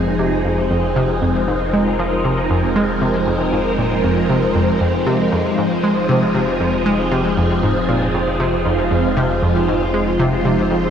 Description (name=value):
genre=ambient, sequencer-driven space music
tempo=117 BPM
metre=4/4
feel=straight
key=F minor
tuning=A4 = 437 Hz
part: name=phased string machine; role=sustained chords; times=0.0-10.9 s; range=F3 to C5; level=-18 LUFS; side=equal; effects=ensemble chorus, phaser, shimmer reverb
part: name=analog pluck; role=riff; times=0.0-10.8 s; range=F2 to Ab3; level=-19 LUFS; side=equal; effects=chorus, vintage 12-bit sampler grit, ping-pong delay, shimmer reverb
part: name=round analog bass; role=bass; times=0.0-10.9 s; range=F1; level=-27 LUFS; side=equal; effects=transformer saturation
part: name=wind-like tuned noise texture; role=texture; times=0.0-10.9 s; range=C5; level=-27 LUFS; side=equal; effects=built-in reverb, shimmer reverb
part: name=vibraphone with soft mallets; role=arpeggios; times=0.2-10.9 s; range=Eb4 to C5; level=-29 LUFS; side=moving between left 4 dB and right 3 dB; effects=none
room=wet lush hall reverb, RT60 3.1 s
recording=worn, warbling old tape, cassette tape, warbly pitch drift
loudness=-15 LUFS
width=side -8 dB against mid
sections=0.0-10.9 A section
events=none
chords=0.0 Fm7